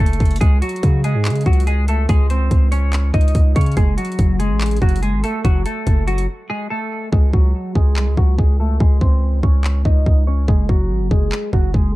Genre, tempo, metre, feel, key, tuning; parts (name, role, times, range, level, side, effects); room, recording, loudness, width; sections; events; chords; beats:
hip hop, trap; 143 BPM; 4/4; half-time; A4 = 440 Hz
semi-hollow electric guitar; melody; 0.0-11.9 s; F#3 to D#5; -23 LUFS; equal; wide subtle chorus, low-pass filter
distorted 808-style bass; bass; 0.0-11.9 s; F#1 to C#3; -17 LUFS; equal; distortion
trap drum kit; drums; 0.1-11.8 s; handclaps, hi-hat, kick drum; -16 LUFS; equal
little or no reverb; dark, warm production; -14 LUFS; side -18 dB against mid
0.0-7.1 A section; 7.1-12.0 B section
break 6.3-7.1; hi-hats muted 7.1-12.0; filter sweep on clean electric guitar 7.1-12.0
0.4 C#5; 3.8 F#m; 7.1 C#5; 10.5 N.C.
| 0.41 0.83 1.25 1.67 | 2.09 2.51 2.93 3.35 | 3.77 4.19 4.61 5.03 | 5.45 5.87 6.29 6.71 | 7.12 7.54 7.96 8.38 | 8.80 9.22 9.64 10.06 | 10.48 10.90 11.32 11.74